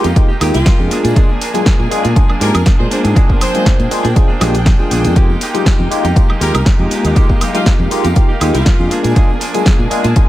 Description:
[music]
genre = filtered disco house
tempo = 120 BPM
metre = 4/4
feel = swing 53% on 16ths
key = unclear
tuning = A4 = 440 Hz
[part]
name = overdriven tine electric piano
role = accompaniment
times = 0.0-10.3 s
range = Ab3 to Ab4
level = -18 LUFS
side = equal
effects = phaser, vintage 12-bit sampler grit, sidechain pumping
[part]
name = dark studio violin section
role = sustained chords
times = 0.0-10.3 s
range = Ab3 to Ab5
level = -25 LUFS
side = equal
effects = sidechain pumping
[part]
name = direct-recorded clean electric guitar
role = riff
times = 0.0-10.3 s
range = F3 to Ab4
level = -24 LUFS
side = right 3 dB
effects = sidechain pumping, dub echo
[part]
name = fingered electric bass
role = bass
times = 0.0-10.1 s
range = Bb1 to Bb2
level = -15 LUFS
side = equal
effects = sidechain pumping
[part]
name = house drum kit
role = drums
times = 0.0-10.3 s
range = hi-hat, shaker, snare drum, woodblock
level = -21 LUFS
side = equal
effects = sidechain pumping on hats, sidechain pumping on perc, sidechain pumping on cymbals, dub echo
[part]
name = tambourine and congas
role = percussion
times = 0.0-10.3 s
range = none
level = -26 LUFS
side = left 5 dB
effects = none
[part]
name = electronic kick drum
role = drums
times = 0.2-10.3 s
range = none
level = -11 LUFS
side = equal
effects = none
[part]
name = warm horn section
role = melody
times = 0.5-9.0 s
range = F4 to C5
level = -25 LUFS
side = equal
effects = none
[sound]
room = digital ambience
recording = echo-heavy mix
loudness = -10 LUFS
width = side -15 dB against mid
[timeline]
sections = 0.0-10.3 A section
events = none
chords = 0.0 Fm11; 0.9 Bb7; 5.2 Fm11; 8.9 Bb7

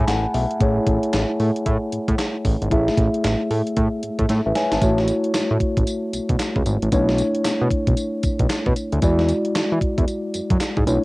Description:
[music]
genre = R&B, new jack swing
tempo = 114 BPM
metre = 4/4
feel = swing 62% on 16ths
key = unclear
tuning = A4 = 440 Hz
[part]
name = mellow tine electric piano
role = accompaniment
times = 0.0-11.0 s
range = G#3 to B5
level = -22 LUFS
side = left 1 dB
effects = medium stereo tremolo, cassette tape, plate reverb
[part]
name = fat analog bass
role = bass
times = 0.0-11.0 s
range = G#1 to E3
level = -21 LUFS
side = equal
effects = none
[part]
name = gated 80s digital drum machine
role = drums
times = 0.1-11.0 s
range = handclaps, hi-hat, kick drum, snare drum, tambourine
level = -22 LUFS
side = equal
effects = gated reverb, gated reverb snare, cassette tape
[sound]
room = light reverb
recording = home recording on cassette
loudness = -18 LUFS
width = side -22 dB against mid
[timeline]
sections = 0.0-4.8 A section; 4.8-11.0 B section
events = tine electric piano fill 0.0-0.6; drum fill 4.3-4.8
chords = 0.0 Amaj7; 6.9 Bm11; 9.0 E9

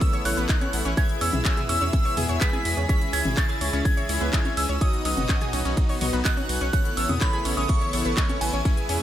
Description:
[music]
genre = progressive house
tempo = 125 BPM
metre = 4/4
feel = straight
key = unclear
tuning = A4 = 443 Hz
[part]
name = glassy synth bell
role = melody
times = 0.0-9.0 s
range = G#5 to B6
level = -30 LUFS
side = right 2 dB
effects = chorus, ping-pong delay
[part]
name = airy dreamy lead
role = second line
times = 0.0-9.0 s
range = G#5 to B6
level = -36 LUFS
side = equal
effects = chorus, sidechain pumping, tape echo
[part]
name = warm chamber string section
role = sustained chords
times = 0.0-9.0 s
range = B2 to G#4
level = -35 LUFS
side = right 1 dB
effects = sidechain pumping
[part]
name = soft supersaw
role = stabs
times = 0.0-9.0 s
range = B3 to G#5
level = -30 LUFS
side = left 2 dB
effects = sidechain pumping, tape echo
[part]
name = electronic kick drum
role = drums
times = 0.0-8.7 s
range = none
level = -23 LUFS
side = equal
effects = none
[part]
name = house drum kit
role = drums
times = 0.0-9.0 s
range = handclaps, hi-hat, ride cymbal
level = -31 LUFS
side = right 1 dB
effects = sidechain pumping on hats, sidechain pumping on cymbals
[part]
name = electronic congas and toms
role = percussion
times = 0.0-8.4 s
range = none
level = -32 LUFS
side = left 3 dB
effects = sidechain pumping on perc, sidechain pumping on toms
[part]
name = analog pluck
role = arpeggios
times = 0.1-8.9 s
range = C#3 to C#6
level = -32 LUFS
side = equal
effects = chorus, sidechain pumping, tape echo
[part]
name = saturated sub bass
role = bass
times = 0.3-9.0 s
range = F#1 to E2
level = -28 LUFS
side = equal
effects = sidechain pumping
[sound]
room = little or no reverb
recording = none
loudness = -21 LUFS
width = side -12 dB against mid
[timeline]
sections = 0.0-9.0 A section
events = none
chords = 0.0 Aadd9; 1.0 E; 2.9 C#m; 4.8 B; 6.7 Aadd9

